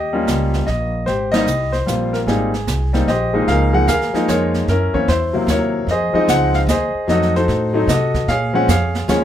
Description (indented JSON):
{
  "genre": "jazz piano trio",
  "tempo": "150 BPM",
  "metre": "3/4",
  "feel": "swing 65% on 8ths",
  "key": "Ab major, Db major from 3.5 s",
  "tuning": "A4 = 440 Hz",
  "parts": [
    { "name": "clear baby grand piano", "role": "melody", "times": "0.0-9.2 s", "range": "Db2 to Gb5", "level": "-17 LUFS", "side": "left 1 dB", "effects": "none" },
    { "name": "upright bass", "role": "bass", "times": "0.0-9.2 s", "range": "Ab1 to C3", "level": "-20 LUFS", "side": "right 1 dB", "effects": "none" },
    { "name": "jazz brush drum kit", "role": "drums", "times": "0.3-9.2 s", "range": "brushed snare drum, hi-hat, kick drum, ride cymbal, snare drum", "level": "-25 LUFS", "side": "right 2 dB", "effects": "none" }
  ],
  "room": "moderate club reverb, RT60 0.7 s",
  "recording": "minimal, uncompressed stereo recording",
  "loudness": "-15 LUFS",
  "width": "side -10 dB against mid",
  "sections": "0.0-3.5 A section; 3.5-9.2 B section",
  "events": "band accent 1.3",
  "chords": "0.0 Eb7; 1.1 Abmaj9; 3.5 Db69; 4.7 Gb7#11; 5.9 Fm7; 7.1 F7b9; 8.3 Bbm7"
}